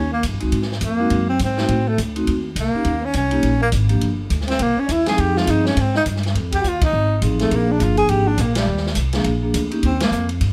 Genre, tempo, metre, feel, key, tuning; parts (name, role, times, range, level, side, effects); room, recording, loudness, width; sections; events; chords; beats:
jazz, small-group swing and bop; 206 BPM; 4/4; swing 60% on 8ths; A4 = 441 Hz
warm tenor saxophone; melody; 0.0-10.3 s; G3 to Ab4; -23 LUFS; equal
warm trombone; second line; 0.0-8.9 s; G3 to Ab4; -29 LUFS; equal
upright bass; bass; 0.0-10.5 s; G1 to A2; -24 LUFS; equal
open jazz drum kit; drums; 0.2-10.5 s; hi-hat, kick drum, ride cymbal, snare drum; -28 LUFS; equal
vibraphone with medium mallets; accompaniment; 0.4-9.8 s; F3 to G#4; -24 LUFS; equal
light reverb; -19 LUFS; mono
0.0-9.8 A section
band accent 6.8, 8.5, 10.0
0.0 Eb7; 0.5 Ab7; 1.7 Adim; 2.9 Eb7; 4.0 G5; 4.6 C7alt; 5.2 Fm7; 7.5 Bb7; 8.7 Eb; 9.2 Bb7; 9.8 Eb
0.24 | 0.53 0.82 1.11 1.40 | 1.69 1.99 2.27 2.57 | 2.86 3.15 3.44 3.73 | 4.02 4.31 4.60 4.89 | 5.18 5.47 5.76 6.05 | 6.34 6.63 6.92 7.22 | 7.51 7.80 8.09 8.38 | 8.67 8.96 9.25 9.54 | 9.83 10.12 10.41